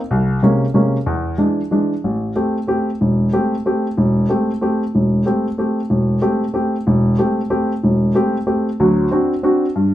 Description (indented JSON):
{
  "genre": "jazz",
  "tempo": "186 BPM",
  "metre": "3/4",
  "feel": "swing 62% on 8ths",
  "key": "A minor",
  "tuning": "A4 = 440 Hz",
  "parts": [
    { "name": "warm baby grand piano", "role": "solo", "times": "0.1-9.9 s", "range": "E1 to G4", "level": "-15 LUFS", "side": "equal", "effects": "none" }
  ],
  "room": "wet studio reverb, RT60 0.8 s",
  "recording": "band playing live in one room",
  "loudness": "-15 LUFS",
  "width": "side -13 dB against mid",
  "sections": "0.0-2.0 A section; 2.0-9.8 B section",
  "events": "none",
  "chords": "0.1 Bbm7/C; 1.1 E7; 2.0 Am7; 8.8 D7"
}